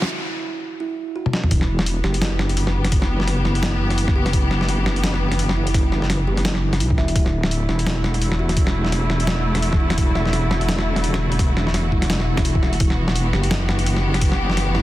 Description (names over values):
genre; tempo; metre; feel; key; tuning
half-time drum and bass; 170 BPM; 4/4; swing 57% on 16ths, half-time; E minor; A4 = 438 Hz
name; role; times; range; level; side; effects
clear studio string section; sustained chords; 0.0-14.8 s; D3 to G4; -26 LUFS; left 1 dB; sidechain pumping
kalimba; arpeggios; 0.0-14.8 s; D4 to E5; -29 LUFS; right 4 dB; vintage 12-bit sampler grit, dub echo
deep soft wobble bass; bass; 0.0-14.8 s; D1 to B1; -21 LUFS; equal; chorus, high-pass filter
boom bap sampler-style drum kit; drums; 0.0-14.8 s; hi-hat, snare drum, toms; -24 LUFS; equal; soft clipping on snare, studio reverb
riser and swell; sound effects; 0.0-0.1, 12.3-12.8 s; none; -31 LUFS; left 2 dB; none
electronic kick drum; drums; 1.5-14.3 s; none; -19 LUFS; equal; high-pass filter on kick, studio reverb
room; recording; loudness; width
digital ambience; dense, heavily limited modern master; -17 LUFS; side -15 dB against mid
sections
0.0-1.5 A section; 1.5-14.8 B section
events
build-up 0.0-1.5; break 0.1-1.5; drum fill 1.2; drop 1.5-14.8; swell 12.3-12.8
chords
0.0 N.C.; 1.5 Em7; 7.2 D; 12.8 Em7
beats
| 0.10 0.45 0.80 1.16 | 1.51 1.86 2.21 2.57 | 2.92 3.27 3.63 3.98 | 4.33 4.68 5.04 5.39 | 5.74 6.10 6.45 6.80 | 7.16 7.51 7.86 8.21 | 8.57 8.92 9.27 9.63 | 9.98 10.33 10.69 11.04 | 11.39 11.74 12.10 12.45 | 12.80 13.16 13.51 13.86 | 14.21 14.57